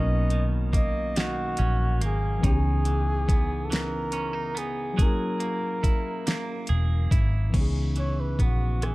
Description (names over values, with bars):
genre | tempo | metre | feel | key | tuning
slow six-eight R&B | 47 BPM (dotted quarters) | 6/8 | straight | unclear | A4 = 438 Hz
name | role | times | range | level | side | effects
warm flugelhorn | melody | 0.0-8.9 s | F#4 to D#5 | -31 LUFS | equal | none
clean electric guitar | second line | 0.0-8.9 s | B2 to G#4 | -35 LUFS | right 5 dB | none
tine electric piano | accompaniment | 0.0-8.9 s | E3 to A#4 | -33 LUFS | left 3 dB | overdrive
vintage muted fingered electric bass | bass | 0.0-8.9 s | E1 to C#2 | -25 LUFS | equal | none
smooth R&B drum kit | drums | 0.3-8.9 s | crash cymbal, hi-hat, kick drum, rim click, snare drum | -24 LUFS | equal | none
room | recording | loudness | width
little or no reverb | dark, warm production | -23 LUFS | side -20 dB against mid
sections
0.0-7.5 A section; 7.5-8.9 B section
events
none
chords
0.0 Bmaj9; 2.4 C#m9; 5.0 F#9; 7.5 C#m9